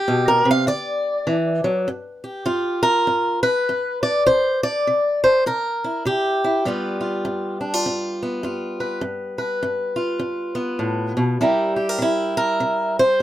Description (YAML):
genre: acoustic country blues, solo or duo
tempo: 101 BPM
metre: 4/4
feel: swing 61% on 8ths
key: G mixolydian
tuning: A4 = 440 Hz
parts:
  - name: fingerpicked swing-style acoustic guitar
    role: solo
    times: 0.0-13.2 s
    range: G2 to F5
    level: -19 LUFS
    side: equal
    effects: none
room: light reverb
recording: close, detailed microphones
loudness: -19 LUFS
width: side -13 dB against mid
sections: 0.0-1.9 A section; 1.9-13.2 B section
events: steel-string acoustic guitar solo 0.0-1.9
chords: 0.0 G; 0.7 D; 1.9 N.C.; 4.3 C7; 6.6 G7; 11.4 C7